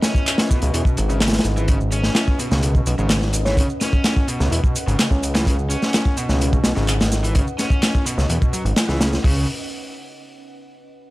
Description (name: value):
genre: breakbeat, breaks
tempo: 127 BPM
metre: 4/4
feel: straight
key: C# minor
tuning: A4 = 440 Hz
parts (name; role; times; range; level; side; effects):
- deep dark ambient pad; sustained chords; 0.0-9.5 s; C#4 to F#5; -31 LUFS; equal; chorus, built-in reverb, sidechain pumping
- overdriven semi-hollow guitar; riff; 0.0-9.5 s; B2 to C#4; -27 LUFS; left 1 dB; tube saturation, vintage 12-bit sampler grit, analog delay
- crunchy breakbeat drum kit; drums; 0.0-9.4 s; hi-hat, kick drum, snare drum; -19 LUFS; equal; none
- electronic shaker and handclaps; drums; 0.0-9.2 s; none; -27 LUFS; right 1 dB; none
- fat analog bass; bass; 0.6-9.5 s; G#1 to E2; -20 LUFS; equal; none
- bell-like FM electric piano; melody; 3.5-3.7 s; C#5; -28 LUFS; right 1 dB; chorus, tremolo, AM radio sound, analog delay
room: small room ambience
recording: dry, gritty hardware recording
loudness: -16 LUFS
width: side -18 dB against mid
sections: 0.0-9.2 A section; 9.2-11.1 B section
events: drop 0.0-9.2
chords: 0.0 C#m9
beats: 0.27 0.74 1.21 | 1.68 2.15 2.63 3.10 | 3.57 4.04 4.52 4.99 | 5.46 5.93 6.41 6.88 | 7.35 7.82 8.30 8.77 | 9.24